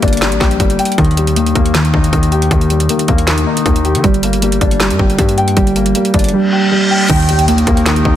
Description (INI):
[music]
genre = hip hop, trap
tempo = 157 BPM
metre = 4/4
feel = half-time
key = unclear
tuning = A4 = 435 Hz
[part]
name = dark grand piano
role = accompaniment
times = 0.0-8.2 s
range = Eb3 to G5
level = -16 LUFS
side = left 4 dB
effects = low-pass filter
[part]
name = muted felt-like synth keys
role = arpeggios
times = 0.0-8.2 s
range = Eb3 to Bb3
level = -16 LUFS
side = right 2 dB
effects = chorus, low-pass filter, tape echo
[part]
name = distorted 808-style bass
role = bass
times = 0.0-8.2 s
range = G1 to Eb3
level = -17 LUFS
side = equal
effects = distortion
[part]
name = trap drum kit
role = drums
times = 0.0-8.1 s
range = crash cymbal, handclaps, hi-hat, kick drum, snare drum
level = -15 LUFS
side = equal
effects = none
[part]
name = reverse cymbal and impact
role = sound effects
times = 6.4-8.2 s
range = none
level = -18 LUFS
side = equal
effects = none
[part]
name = warm velvety synth lead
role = second line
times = 7.1-7.5 s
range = G5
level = -19 LUFS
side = right 2 dB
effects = chorus, tape echo
[part]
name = airy breathy pad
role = sustained chords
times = 7.6-8.2 s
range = Eb3 to G4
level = -22 LUFS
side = right 1 dB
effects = none
[sound]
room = light reverb, digital ambience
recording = dense, heavily limited modern master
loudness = -10 LUFS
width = side -11 dB against mid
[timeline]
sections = 0.0-7.1 A section; 7.1-8.2 B section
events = drums muted 6.3-7.1; reverse cymbal 6.4-7.1; impact 7.1-8.2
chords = 0.0 Gm; 1.0 Eb; 4.0 Gm; 7.1 Eb